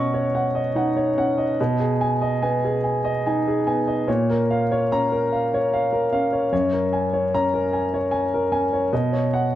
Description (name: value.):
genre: neoclassical minimalist piano.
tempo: 74 BPM.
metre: 3/4.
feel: rubato.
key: F# major.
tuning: A4 = 441 Hz.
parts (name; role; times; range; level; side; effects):
dark grand piano; solo; 0.0-9.6 s; F#2 to C#6; -19 LUFS; equal; none.
room: moderate stone room reverb, RT60 1.2 s.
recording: none.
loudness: -19 LUFS.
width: side -13 dB against mid.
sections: 0.0-9.6 A section.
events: none.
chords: 0.0 Badd9; 1.6 G#m/B; 4.1 A#m; 6.5 F#add9; 8.9 Badd9.